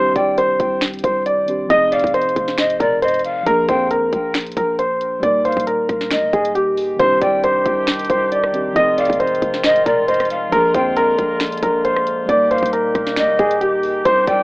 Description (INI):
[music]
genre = hip hop, trap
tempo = 136 BPM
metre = 4/4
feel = half-time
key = unclear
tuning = A4 = 436 Hz
[part]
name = warm baby grand piano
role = melody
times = 0.0-14.4 s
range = G4 to Eb5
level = -16 LUFS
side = equal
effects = low-pass filter
[part]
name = mellow tine electric piano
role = accompaniment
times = 0.0-14.1 s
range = Eb3 to Bb4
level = -27 LUFS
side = right 1 dB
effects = medium stereo tremolo, low-pass filter
[part]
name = growling 808-style bass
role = bass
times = 0.0-14.4 s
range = Eb1 to F2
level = -30 LUFS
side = equal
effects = none
[part]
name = breathy mellow large pan pipes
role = second line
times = 0.2-14.4 s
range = D5 to G5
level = -21 LUFS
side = left 1 dB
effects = digital delay
[part]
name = trap drum kit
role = drums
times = 0.2-14.4 s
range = finger snaps, hi-hat, kick drum, rim click, snare drum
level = -23 LUFS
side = equal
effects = none
[part]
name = mellow woodwind section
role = sustained chords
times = 7.0-14.4 s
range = D3 to G4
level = -24 LUFS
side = equal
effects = none
[sound]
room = light reverb, small room ambience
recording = rough home demo mix, AM radio sound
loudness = -14 LUFS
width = side -25 dB against mid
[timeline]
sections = 0.0-14.4 A section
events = none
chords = 0.0 Cmadd9; 1.7 Fm7; 3.5 Bb7; 5.2 Eb; 7.0 Cmadd9; 8.8 Fm7; 10.5 Bb7; 12.3 Eb